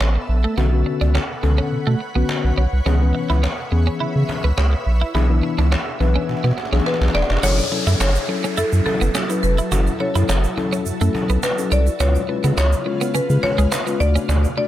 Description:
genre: dance-pop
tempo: 105 BPM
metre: 4/4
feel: straight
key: F# minor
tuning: A4 = 440 Hz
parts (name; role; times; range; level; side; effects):
- shimmering ambient pad; sustained chords; 0.0-14.7 s; C#3 to F#5; -29 LUFS; right 1 dB; chorus, built-in reverb
- twelve-string electric guitar; riff; 0.0-14.6 s; G#3 to F#4; -27 LUFS; right 4 dB; wide subtle chorus
- saturated sub bass; bass; 0.0-14.5 s; E1 to C#3; -17 LUFS; right 1 dB; none
- cajon; drums; 0.0-14.7 s; none; -27 LUFS; equal; none
- mellow tine electric piano; accompaniment; 0.6-14.7 s; D3 to D5; -24 LUFS; left 6 dB; none
- swell and downlifter; sound effects; 6.0-12.0 s; none; -30 LUFS; equal; none
- marimba with medium hard mallets; melody; 6.9-14.7 s; A4 to D5; -24 LUFS; left 2 dB; digital delay
- egg shaker; percussion; 7.4-14.6 s; none; -34 LUFS; right 10 dB; none
room: studio ambience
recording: none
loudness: -16 LUFS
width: side -13 dB against mid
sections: 0.0-7.4 A section; 7.4-14.7 B section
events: swell 6.0-7.4; drum fill 6.3-7.4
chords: 0.0 Asus2; 0.6 Bmadd9; 2.9 C#m7; 5.1 E7/B; 7.4 F#m7; 12.0 C#7; 14.0 Dmaj7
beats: 0.01 | 0.58 1.15 1.72 2.29 | 2.86 3.43 4.00 4.58 | 5.15 5.72 6.29 6.86 | 7.43 8.01 8.58 9.15 | 9.72 10.29 10.86 11.43 | 12.01 12.58 13.15 13.72 | 14.29

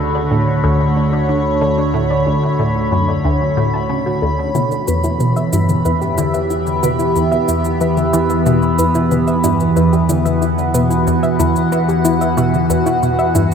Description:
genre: ambient, sequencer-driven space music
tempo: 92 BPM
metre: 4/4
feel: straight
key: E dorian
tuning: A4 = 440 Hz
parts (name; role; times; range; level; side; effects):
- evolving wavetable pad; sustained chords; 0.0-13.5 s; D3 to B5; -15 LUFS; equal; chorus, built-in reverb, phaser
- fat analog bass; bass; 0.0-13.5 s; D2 to E2; -24 LUFS; equal; none
- soft round pluck; arpeggios; 0.1-13.5 s; D4 to A5; -24 LUFS; left 1 dB; chorus, auto-pan, analog delay
- resonant blip pluck; riff; 0.3-13.5 s; D2 to E3; -19 LUFS; equal; phaser, wide subtle chorus, analog delay
- electronic toms and cabasa; percussion; 4.5-13.5 s; none; -27 LUFS; left 3 dB; overdrive, analog delay
room: wet cathedral reverb, RT60 5.9 s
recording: in a vast, echoing space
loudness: -13 LUFS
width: side -7 dB against mid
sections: 0.0-13.5 A section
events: fade-in on synth arpeggio sound 0.0-13.5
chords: 0.0 D; 4.5 Em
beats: 0.64 1.29 | 1.94 2.59 3.25 3.90 | 4.55 5.20 5.85 6.50 | 7.16 7.81 8.46 9.11 | 9.77 10.42 11.07 11.72 | 12.38 13.03

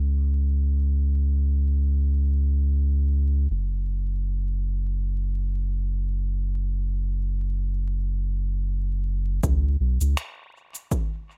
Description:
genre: ambient dub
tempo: free time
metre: none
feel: none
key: unclear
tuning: A4 = 441 Hz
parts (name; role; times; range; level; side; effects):
- soft dub sub bass; bass; 0.0-10.2 s; F#1 to C#2; -25 LUFS; equal; tube saturation
- electronic cabasa and finger snaps; drums; 9.4-11.1 s; none; -38 LUFS; equal; low-pass filter on perc, studio reverb, low-pass filter on snare, dub echo
- electronic kick drum; drums; 9.4-11.1 s; none; -28 LUFS; equal; studio reverb
room: digital ambience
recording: vinyl crackle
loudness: -25 LUFS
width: mono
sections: 0.0-9.4 A section; 9.4-11.4 B section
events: none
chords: none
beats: free time

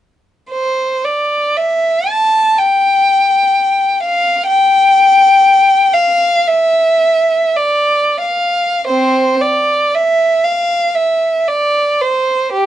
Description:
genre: classical, free, expressive piece for unaccompanied violin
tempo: 40-65 BPM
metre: 4/4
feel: rubato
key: C major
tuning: A4 = 440 Hz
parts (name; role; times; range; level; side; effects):
- rich violin; solo; 0.5-12.7 s; C4 to A5; -10 LUFS; equal; none
room: light reverb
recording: dark, warm production, nothing above 10.8 kHz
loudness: -10 LUFS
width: side -11 dB against mid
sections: 0.5-8.9 A section; 8.9-12.7 B section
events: none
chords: none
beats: | 0.51 1.59 2.60 3.56 | 4.49 5.44 6.48 7.58 | 8.86 9.94 10.95 11.99

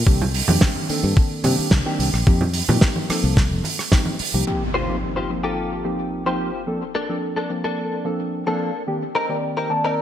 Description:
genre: nu-disco, nu disco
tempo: 109 BPM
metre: 4/4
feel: straight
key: unclear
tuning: A4 = 440 Hz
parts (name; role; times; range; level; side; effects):
- fingered electric bass; bass; 0.0-4.4 s; F1 to C3; -21 LUFS; equal; none
- mellow reed electric piano; accompaniment; 0.1-10.0 s; Eb3 to A5; -25 LUFS; equal; analog chorus, ping-pong delay
- electronic kick drum; drums; 0.1-4.0 s; none; -16 LUFS; equal; none
- congas; percussion; 0.2-4.2 s; none; -25 LUFS; right 2 dB; none
- damped 70s drum kit; drums; 0.3-4.3 s; hi-hat, rim click, snare drum; -22 LUFS; right 2 dB; low-pass filter on hats, low-pass filter on snare, low-pass filter on room, gated reverb
- impact; sound effects; 4.5-6.7 s; none; -30 LUFS; equal; none
- direct-recorded clean electric guitar; riff; 4.7-10.0 s; Bb3 to C5; -25 LUFS; left 2 dB; ensemble chorus, low-pass filter, ping-pong delay
room: light reverb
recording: bright 1980s-style digital production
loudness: -19 LUFS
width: side -10 dB against mid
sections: 0.0-4.5 A section; 4.5-10.0 B section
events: impact 4.5-6.7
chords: 0.1 Cm7; 2.3 F9sus4; 6.7 Bbmaj7; 8.9 Cm7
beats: | 0.07 0.62 1.17 1.72 | 2.27 2.82 3.37 3.92 | 4.47 5.02 5.57 6.12 | 6.67 7.22 7.78 8.33 | 8.88 9.43 9.98

